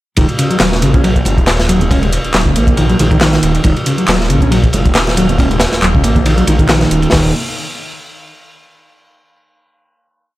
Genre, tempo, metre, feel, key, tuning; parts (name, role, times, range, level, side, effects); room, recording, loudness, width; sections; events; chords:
breakbeat, breaks; 138 BPM; 4/4; swing 55% on 16ths; Eb minor; A4 = 440 Hz
mellow electric guitar; riff; 0.2-7.3 s; Db3 to Db4; -15 LUFS; equal; vintage 12-bit sampler grit, tape echo
phased detuned saw bass; bass; 0.2-7.3 s; Eb1 to Bb1; -15 LUFS; equal; phaser
crunchy breakbeat drum kit; drums; 0.2-7.2 s; hi-hat, kick drum, ride cymbal, snare drum; -14 LUFS; equal
punchy analog drum machine; drums; 0.2-7.1 s; handclaps, hi-hat; -20 LUFS; equal
congas and bongos; percussion; 0.2-6.7 s; -23 LUFS; right 2 dB
little or no reverb; -9 LUFS; side -16 dB against mid
0.2-7.1 drop; 7.1-8.9 final note
drop 0.2-7.1
0.2 Ebm; 7.1 N.C.